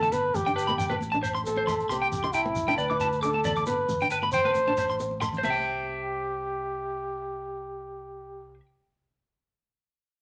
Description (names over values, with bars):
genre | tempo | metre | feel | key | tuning
highlife guitar band | 135 BPM | 4/4 | swing 53% on 16ths | C major | A4 = 440 Hz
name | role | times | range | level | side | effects
breathy trumpet | melody | 0.0-8.6 s | E4 to C5 | -31 LUFS | equal | none
flamenco guitar | accompaniment | 0.0-5.6 s | A3 to E4 | -39 LUFS | equal | none
electric guitar at the edge of break-up | arpeggios | 0.0-8.7 s | B4 to D6 | -31 LUFS | equal | none
fingered electric bass | bass | 0.0-8.6 s | G1 to D2 | -41 LUFS | equal | none
shekere | percussion | 0.0-5.6 s | none | -42 LUFS | equal | none
agogo bells | percussion | 0.1-5.5 s | none | -39 LUFS | equal | none
congas | percussion | 0.3-5.6 s | none | -41 LUFS | equal | none
room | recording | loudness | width
wet club reverb, RT60 0.9 s | none | -27 LUFS | mono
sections
0.0-5.4 A section; 5.4-9.0 B section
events
drum fill 5.1-5.4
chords
0.1 G; 1.0 Amadd11; 1.9 C; 2.8 D5; 3.7 G; 4.6 Amadd11; 5.4 C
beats
| 0.12 0.56 1.01 1.45 | 1.89 2.33 2.78 3.22 | 3.67 4.11 4.55 5.00 | 5.44 5.88 6.33 6.77 | 7.21 7.65 8.10 8.54